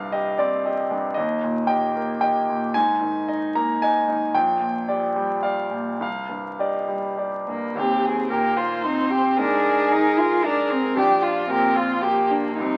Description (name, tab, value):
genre	neoclassical piano and strings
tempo	101-116 BPM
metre	3/4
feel	rubato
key	Eb major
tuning	A4 = 440 Hz
part	bright concert grand piano	accompaniment	0.0-12.8 s	Bb1 to Bb5	-25 LUFS	equal	none
part	muted cello	second line	7.5-12.8 s	Bb3 to F4	-26 LUFS	equal	none
part	muted violin	melody	7.8-12.8 s	D4 to Bb4	-24 LUFS	equal	none
part	muted viola	accompaniment	7.8-12.8 s	F4 to C5	-30 LUFS	equal	none
room	moderate small room reverb, RT60 0.5 s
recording	very old 78 rpm record, vinyl crackle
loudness	-22 LUFS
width	mono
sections	0.0-7.8 A section; 7.8-12.8 B section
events	none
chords	0.0 Cmadd9; 1.2 Eb; 2.7 Absus2; 4.3 Gm/Bb; 6.0 Cmadd9; 7.8 Eb; 9.4 Absus2; 11.0 Gm/Bb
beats	0.13 0.65 | 1.17 1.69 2.22 | 2.74 3.27 3.81 | 4.34 4.88 5.43 | 6.00 6.59 7.18 | 7.76 8.30 8.84 | 9.38 9.91 10.44 | 10.97 11.49 12.04 | 12.60